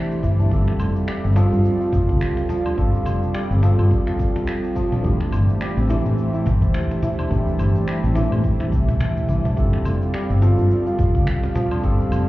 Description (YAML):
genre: organic downtempo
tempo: 106 BPM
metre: 4/4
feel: swing 57% on 16ths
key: unclear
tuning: A4 = 440 Hz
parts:
  - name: tine electric piano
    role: accompaniment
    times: 0.0-12.3 s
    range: E3 to A4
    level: -27 LUFS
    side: right 2 dB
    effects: overdrive, fast stereo tremolo, sidechain pumping, tape echo
  - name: warbly tape-like pad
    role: sustained chords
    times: 0.0-12.3 s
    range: G4 to A5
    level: -34 LUFS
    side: right 2 dB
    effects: chorus, built-in reverb, sidechain pumping
  - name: santur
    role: arpeggios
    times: 0.0-12.3 s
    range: E3 to F4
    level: -25 LUFS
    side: equal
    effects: tape echo
  - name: electronic shaker, finger snaps and woodblock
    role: drums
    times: 0.1-12.2 s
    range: none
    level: -36 LUFS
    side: equal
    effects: none
  - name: fretless electric bass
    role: bass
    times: 0.2-12.2 s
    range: E1 to A2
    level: -19 LUFS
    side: equal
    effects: tube saturation, wide subtle chorus, sidechain pumping
  - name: electronic kick drum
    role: drums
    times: 0.2-12.0 s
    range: none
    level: -22 LUFS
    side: equal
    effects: none
  - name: cajon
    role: percussion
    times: 0.8-12.2 s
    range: none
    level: -28 LUFS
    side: right 1 dB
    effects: none
room: light reverb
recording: heard muffled through a wall, club reverb, EQ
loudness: -17 LUFS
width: side -17 dB against mid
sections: 0.0-12.3 A section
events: none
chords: 0.0 Am7; 0.5 G5; 5.0 Am7; 9.6 G5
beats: | 0.52 1.08 1.65 2.21 | 2.78 3.35 3.91 4.48 | 5.04 5.61 6.18 6.74 | 7.31 7.87 8.44 9.01 | 9.57 10.14 10.70 11.27 | 11.84